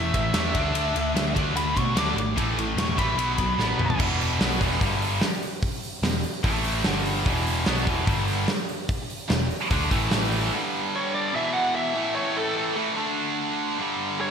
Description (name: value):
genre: hard rock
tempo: 147 BPM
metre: 4/4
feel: straight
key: unclear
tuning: A4 = 440 Hz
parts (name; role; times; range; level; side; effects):
- biting lead guitar; melody; 0.0-4.0, 11.0-14.3 s; A4 to D6; -28 LUFS; equal; overdrive, digital delay
- heavy high-gain guitar; riff; 0.0-14.3 s; E2 to D4; -27 LUFS; right 1 dB; distortion
- heavy high-gain guitar; riff; 0.0-10.5 s; E2 to D4; -30 LUFS; left 1 dB; distortion
- overdriven picked electric bass; bass; 0.0-10.5 s; E1 to B2; -29 LUFS; equal; none
- big rock drum kit; drums; 0.1-10.4 s; crash cymbal, hi-hat, kick drum, ride cymbal, snare drum, toms; -26 LUFS; equal; none
room: moderate lush hall reverb, RT60 1.6 s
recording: bright 1980s-style digital production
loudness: -22 LUFS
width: side -7 dB against mid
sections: 0.0-4.0 A section; 4.0-10.5 B section; 10.5-14.3 C section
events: lead electric guitar solo 0.0-4.0; drum fill 3.6-4.0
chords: 0.0 A5; 0.5 D5; 2.4 A5; 3.2 B5; 4.0 E5; 4.8 G5; 6.0 E5; 6.4 A5; 6.9 G5; 7.3 E5; 8.1 G5; 9.3 E5; 9.9 A5; 10.5 G5; 11.3 E5; 12.0 A5; 13.0 D5; 13.8 G5